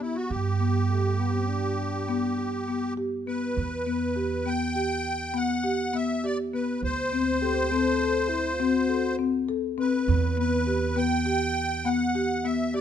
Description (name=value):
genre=contemporary instrumental, chamber music in an uneven meter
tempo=203 BPM (eighths)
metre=11/8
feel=straight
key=E minor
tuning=A4 = 436 Hz
part: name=musette accordion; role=melody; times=0.0-12.8 s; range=E4 to G5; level=-29 LUFS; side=equal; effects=none
part: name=marimba with medium mallets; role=arpeggios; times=0.0-12.8 s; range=B3 to A4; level=-27 LUFS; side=left 3 dB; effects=none
part: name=upright bass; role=bass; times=0.0-12.8 s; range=D2 to G2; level=-30 LUFS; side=right 4 dB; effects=none
part: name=dark French horn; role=second line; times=0.9-9.6 s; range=A3 to A4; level=-33 LUFS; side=left 3 dB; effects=none
room=light reverb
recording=close, detailed microphones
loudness=-24 LUFS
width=side -9 dB against mid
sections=0.0-3.6 A section; 3.6-12.8 B section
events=none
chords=0.3 G; 3.6 Em; 6.8 D7; 10.1 Em